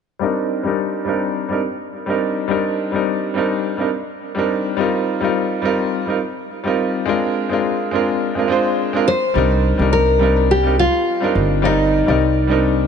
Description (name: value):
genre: sunset chillout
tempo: 105 BPM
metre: 4/4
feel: swing 54% on 16ths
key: C minor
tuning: A4 = 439 Hz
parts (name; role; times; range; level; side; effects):
- clear grand piano; accompaniment; 0.2-12.9 s; G3 to D5; -18 LUFS; moving between left 3 dB and right 3 dB; auto-pan, low-pass filter, tape echo
- nylon-string guitar; melody; 9.1-12.8 s; Eb4 to C5; -17 LUFS; left 1 dB; tape echo
- upright bass; bass; 9.4-12.9 s; G1 to C2; -18 LUFS; right 1 dB; none
room: moderate lush hall reverb, RT60 2.8 s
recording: nothing above 11.0 kHz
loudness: -16 LUFS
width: side -7 dB against mid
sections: 0.2-9.4 A section; 9.4-12.9 B section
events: filter sweep on grand piano 0.2-9.4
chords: 0.2 Cm7; 4.8 F7sus4; 7.1 Bb7; 9.4 Cm7